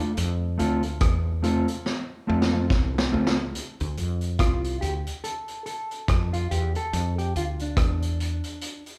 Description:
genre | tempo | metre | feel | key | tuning
roots reggae | 71 BPM | 4/4 | swing 59% on 16ths | unclear | A4 = 440 Hz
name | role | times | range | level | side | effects
mellow electric guitar | accompaniment | 0.0-8.8 s | A3 to A4 | -31 LUFS | equal | slapback echo
woody fretless electric bass | bass | 0.2-8.4 s | C2 to F2 | -29 LUFS | equal | none
vintage drum kit | drums | 0.2-9.0 s | hi-hat, kick drum, rim click, snare drum | -29 LUFS | equal | none
room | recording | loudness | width
light reverb | band playing live in one room | -26 LUFS | mono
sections
0.0-3.5 A section; 3.5-9.0 B section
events
drum fill 1.9-3.5; clean electric guitar solo 3.5-9.0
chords
0.2 F; 3.5 F5

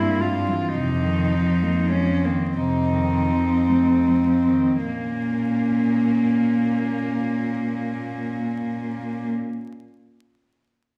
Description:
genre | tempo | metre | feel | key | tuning
classical, lyrical piece for cello ensemble | 24-38 BPM (dotted quarters) | 6/8 | rubato | Bb minor | A4 = 440 Hz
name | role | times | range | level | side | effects
warm cello | melody | 0.0-9.3 s | Bb3 to F4 | -26 LUFS | equal | none
warm cello | second line | 0.0-9.3 s | C4 to Eb4 | -31 LUFS | equal | none
warm cello | accompaniment | 0.0-9.3 s | C3 to Bb3 | -29 LUFS | equal | none
warm cello | bass | 0.0-9.3 s | F2 to Bb2 | -28 LUFS | equal | none
room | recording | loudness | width
wet recital hall reverb, RT60 1.2 s | recorded in a church or concert hall, vinyl crackle | -22 LUFS | mono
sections
0.0-4.8 A section; 4.8-9.2 B section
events
slowing down 0.0-4.8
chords
0.0 C7/G; 0.8 F7sus4; 2.6 F7; 4.8 Bbm

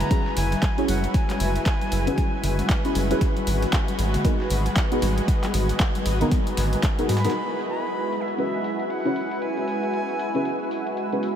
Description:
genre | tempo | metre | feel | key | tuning
deep house | 116 BPM | 4/4 | swing 60% on 16ths | unclear | A4 = 440 Hz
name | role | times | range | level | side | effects
bright reedy jazz flute | melody | 0.0-3.0, 7.2-11.0 s | E5 to B5 | -32 LUFS | equal | analog delay
warm analog pad | sustained chords | 0.0-11.4 s | G#3 to B4 | -30 LUFS | right 1 dB | chorus, sidechain pumping
round analog bass | bass | 0.0-7.3 s | F#1 to G#2 | -24 LUFS | equal | sidechain pumping
dusty soul sampler-style drum kit | drums | 0.0-7.3 s | hi-hat, snare drum | -42 LUFS | left 1 dB | none
punchy analog drum machine | drums | 0.0-11.4 s | crash cymbal, handclaps, hi-hat | -32 LUFS | equal | low-pass filter on hats, low-pass filter on snare, low-pass filter on cymbals
congas | percussion | 0.0-7.2 s | none | -32 LUFS | left 4 dB | sidechain pumping on perc
granular cloud pad | texture | 0.0-11.4 s | F#4 to G#5 | -32 LUFS | equal | built-in reverb, sidechain pumping
deep mellow chord stab | stabs | 0.1-11.3 s | B3 to C#5 | -28 LUFS | equal | chorus, phaser, sidechain pumping, diffuse ambient delay
electronic kick drum | drums | 0.1-7.0 s | none | -23 LUFS | equal | none
room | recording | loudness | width
moderate huge ambient reverb, RT60 8.8 s | dreamy mix soaked in reverb | -21 LUFS | side -9 dB against mid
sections
0.0-7.3 A section; 7.3-11.4 B section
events
none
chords
0.0 F#9sus4; 3.2 G#m7; 7.3 F#9sus4

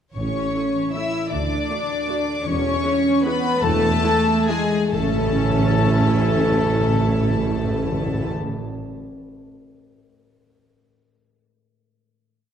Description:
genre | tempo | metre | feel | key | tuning
classical, orchestral ballroom waltz | 130-168 BPM | 3/4 | rubato | A major | A4 = 441 Hz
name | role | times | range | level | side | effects
warm symphonic violin section | melody | 0.2-8.3 s | G#5 to E6 | -27 LUFS | left 5 dB | none
mellow clarinet | second line | 0.2-8.3 s | G#4 to E5 | -29 LUFS | equal | none
warm symphonic violin section | second line | 0.2-8.3 s | G#4 to E5 | -28 LUFS | left 5 dB | none
warm French horn section | sustained chords | 0.2-8.3 s | G#3 to E4 | -26 LUFS | equal | none
concert harp | arpeggios | 0.2-8.8 s | A2 to C#5 | -30 LUFS | left 7 dB | none
mellow tuba | bass | 0.2-8.3 s | E1 to D2 | -29 LUFS | right 4 dB | none
warm symphonic cello section | bass | 0.2-8.3 s | G#3 to E4 | -28 LUFS | right 4 dB | none
warm symphonic double bass section | bass | 0.2-8.3 s | A1 to E2 | -27 LUFS | right 4 dB | none
timpani | percussion | 0.2-0.7, 4.9-8.5 s | A2 | -26 LUFS | equal | none
dark symphonic viola section | accompaniment | 0.6-8.3 s | G#3 to F#4 | -28 LUFS | equal | none
room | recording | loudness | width
wet concert hall reverb, RT60 1.9 s | dark, warm production | -18 LUFS | side -8 dB against mid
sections
0.2-4.9 A section; 4.9-7.5 final chord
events
slowing down 1.9-4.9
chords
0.2 A; 1.3 D; 2.5 E7; 4.9 A

